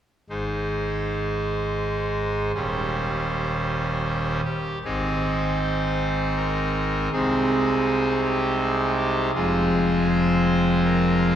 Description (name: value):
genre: classical, chorale-style piece for pipe organ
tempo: 80 BPM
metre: 3/4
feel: rubato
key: Ab major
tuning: A4 = 440 Hz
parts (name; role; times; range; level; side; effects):
- pipe organ, trumpet; solo; 0.3-11.4 s; Eb1 to C5; -21 LUFS; equal; none
room: wet church reverb, RT60 2.8 s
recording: heard from further back in the room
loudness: -21 LUFS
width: side -10 dB against mid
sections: 0.3-4.8 A section; 4.8-11.4 B section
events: none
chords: 0.3 Ab; 2.6 Eb6; 4.8 Ab; 7.1 Ab/C; 9.4 Fm